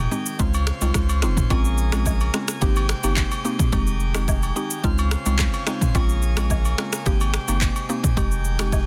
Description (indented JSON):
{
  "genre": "afrobeats",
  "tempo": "108 BPM",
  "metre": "4/4",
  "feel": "straight",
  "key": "unclear",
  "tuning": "A4 = 435 Hz",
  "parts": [
    { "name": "pipe organ, plenum", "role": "sustained chords", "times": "0.0-8.9 s", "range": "C3 to Ab4", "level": "-34 LUFS", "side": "equal", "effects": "none" },
    { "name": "warm sub bass", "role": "bass", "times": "0.0-8.9 s", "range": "F1 to Db2", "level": "-25 LUFS", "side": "equal", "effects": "none" },
    { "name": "mallet-like synth pluck", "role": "accompaniment", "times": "0.1-8.8 s", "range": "Ab3 to G4", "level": "-30 LUFS", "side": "equal", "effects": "chorus, phaser" },
    { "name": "deep house drum kit", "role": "drums", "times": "0.1-8.9 s", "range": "finger snaps, handclaps, kick drum, rim click, shaker, toms", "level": "-25 LUFS", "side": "equal", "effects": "overdrive, soft clipping on snare" },
    { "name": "agogo bells and woodblock", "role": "percussion", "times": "0.5-8.9 s", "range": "none", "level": "-35 LUFS", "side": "equal", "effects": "none" }
  ],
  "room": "little or no reverb",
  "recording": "dense, heavily limited modern master",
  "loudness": "-22 LUFS",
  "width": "mono",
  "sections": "0.0-1.5 A section; 1.5-8.9 B section",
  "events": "none",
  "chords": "0.4 Dbmaj7; 1.5 Bbm7; 2.6 Abmaj7; 3.7 Fm9; 4.8 Dbmaj7; 5.9 Bbm7; 7.1 Abmaj7; 8.2 Fm9",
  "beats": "0.39 0.95 | 1.50 2.06 2.62 3.17 | 3.73 4.28 4.84 5.39 | 5.95 6.50 7.06 7.62 | 8.17 8.73"
}